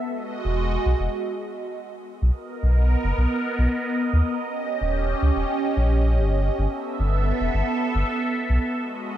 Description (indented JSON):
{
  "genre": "IDM",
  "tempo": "110 BPM",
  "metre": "4/4",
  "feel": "straight",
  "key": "B major",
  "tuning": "A4 = 440 Hz",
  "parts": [
    { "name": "phased analog pad", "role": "sustained chords", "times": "0.0-9.2 s", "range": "G#3 to E5", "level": "-25 LUFS", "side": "right 2 dB", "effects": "phaser, chorus" },
    { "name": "warm sub bass", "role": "bass", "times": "0.5-8.6 s", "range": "D#1 to D#2", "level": "-20 LUFS", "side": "equal", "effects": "none" }
  ],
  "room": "light reverb",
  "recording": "none",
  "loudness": "-21 LUFS",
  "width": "side -12 dB against mid",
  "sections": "0.0-2.2 A section; 2.2-9.2 B section",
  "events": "stop 1.7-2.2",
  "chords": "0.0 Emaj9; 2.2 Bmaj7; 4.4 D#7; 6.6 G69"
}